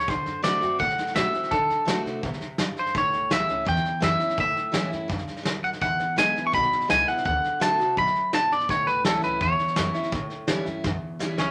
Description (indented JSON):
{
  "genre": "rockabilly",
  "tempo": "167 BPM",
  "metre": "4/4",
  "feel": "straight",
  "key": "A mixolydian",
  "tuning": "A4 = 442 Hz",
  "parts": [
    { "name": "twangy electric guitar", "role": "melody", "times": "0.0-11.5 s", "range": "C#4 to C#6", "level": "-25 LUFS", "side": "equal", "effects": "none" },
    { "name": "picked steel-string acoustic guitar", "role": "accompaniment", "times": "0.0-11.5 s", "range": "E2 to F#4", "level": "-34 LUFS", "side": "equal", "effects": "none" },
    { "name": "upright bass", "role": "bass", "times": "0.0-11.5 s", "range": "E1 to D3", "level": "-38 LUFS", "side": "equal", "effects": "none" },
    { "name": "soft brush drum kit", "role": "drums", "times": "0.1-11.5 s", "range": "hi-hat, kick drum, snare drum", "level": "-31 LUFS", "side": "equal", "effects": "none" }
  ],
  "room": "moderate studio reverb, RT60 0.5 s",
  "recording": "none",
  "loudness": "-24 LUFS",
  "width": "mono",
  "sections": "0.0-11.5 A section",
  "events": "drum fill 10.8-11.5",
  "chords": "0.1 D7; 2.9 A7; 5.8 E7; 7.3 D7; 8.7 A7"
}